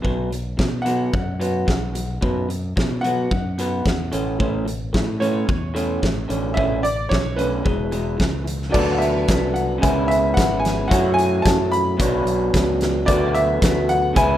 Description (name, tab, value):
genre	indie rock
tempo	110 BPM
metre	4/4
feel	straight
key	B dorian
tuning	A4 = 439 Hz
part	electric guitar through a small old amp	riff	0.0-14.4 s	E2 to C#5	-22 LUFS	equal	none
part	modern bright fingered electric bass	bass	0.0-14.4 s	E1 to B2	-25 LUFS	equal	none
part	big rock drum kit	drums	0.0-14.3 s	crash cymbal, hi-hat, kick drum, snare drum	-23 LUFS	equal	none
part	bright upright piano	melody	0.8-14.4 s	B4 to B5	-24 LUFS	equal	slapback echo
room	moderate small room reverb, RT60 0.5 s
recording	rough home demo mix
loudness	-18 LUFS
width	side -12 dB against mid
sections	0.0-8.7 A section; 8.7-14.4 B section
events	none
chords	0.0 B5; 4.1 A; 6.3 D5/A; 7.7 E; 8.7 D6; 9.8 C#m7; 10.9 F#m7; 12.0 Bmadd9; 13.1 D6